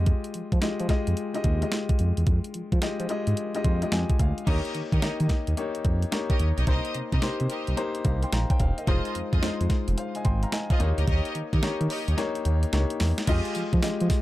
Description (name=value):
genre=R&B, new jack swing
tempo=109 BPM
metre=4/4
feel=swing 65% on 16ths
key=F minor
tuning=A4 = 440 Hz
part: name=warm grand piano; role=accompaniment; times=0.0-14.2 s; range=Ab3 to C6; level=-30 LUFS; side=left 4 dB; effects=none
part: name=smooth synth bass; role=bass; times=0.0-14.1 s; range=E1 to F3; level=-25 LUFS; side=equal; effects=none
part: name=clean 12-bit digital drum machine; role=drums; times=0.1-14.2 s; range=crash cymbal, hi-hat, kick drum, snare drum, tambourine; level=-26 LUFS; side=equal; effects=overdrive
part: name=clear studio string section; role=stabs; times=4.5-13.5 s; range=F4 to Eb5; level=-35 LUFS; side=right 2 dB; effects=ping-pong delay
room=little or no reverb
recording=dark, warm production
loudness=-23 LUFS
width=side -16 dB against mid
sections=0.0-4.5 A section; 4.5-13.3 B section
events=grand piano fill 3.4-4.5; drum fill 12.2-13.3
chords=0.0 Fm9; 4.5 Eb7; 6.7 Cm7; 8.9 Fm7; 10.8 Eb7; 13.3 Fm9